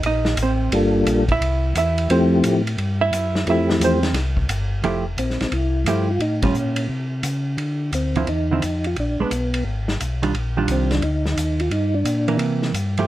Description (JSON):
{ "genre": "soul jazz organ trio", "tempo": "175 BPM", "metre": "4/4", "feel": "swing 65% on 8ths", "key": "F major", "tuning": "A4 = 440 Hz", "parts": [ { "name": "mellow tonewheel organ", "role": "bass", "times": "0.0-13.1 s", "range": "F1 to D3", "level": "-22 LUFS", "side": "left 1 dB", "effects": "slow rotary speaker" }, { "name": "vintage drum kit", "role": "drums", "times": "0.0-13.0 s", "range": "hi-hat, kick drum, ride cymbal, snare drum", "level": "-28 LUFS", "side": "equal", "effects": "none" }, { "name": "hollow-body jazz guitar", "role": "accompaniment", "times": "0.1-13.1 s", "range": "D3 to E5", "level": "-22 LUFS", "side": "right 4 dB", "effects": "none" }, { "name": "percussive tonewheel organ", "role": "melody", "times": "0.7-12.4 s", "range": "F3 to A4", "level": "-21 LUFS", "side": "left 1 dB", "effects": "slow rotary speaker, chorus vibrato" } ], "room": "little or no reverb", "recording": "close, detailed microphones", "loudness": "-18 LUFS", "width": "side -14 dB against mid", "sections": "0.0-4.8 A section; 4.8-13.1 B section", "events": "hollow-body jazz guitar solo 0.0-4.8; band accent 6.4", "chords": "0.0 Eb5; 0.7 Gm7; 1.4 C; 2.1 Fmaj9; 6.2 A(#9); 7.6 Dm9; 9.0 Bb7b9; 10.3 Ebmaj9; 11.7 Gm; 12.4 C7", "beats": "0.03 0.38 | 0.72 1.06 1.41 1.75 | 2.09 2.43 2.78 3.12 | 3.46 3.80 4.15 4.49 | 4.83 5.18 5.52 5.86 | 6.21 6.55 6.89 7.24 | 7.58 7.93 8.27 8.62 | 8.96 9.30 9.65 9.99 | 10.34 10.68 11.02 11.37 | 11.71 12.05 12.40 12.74" }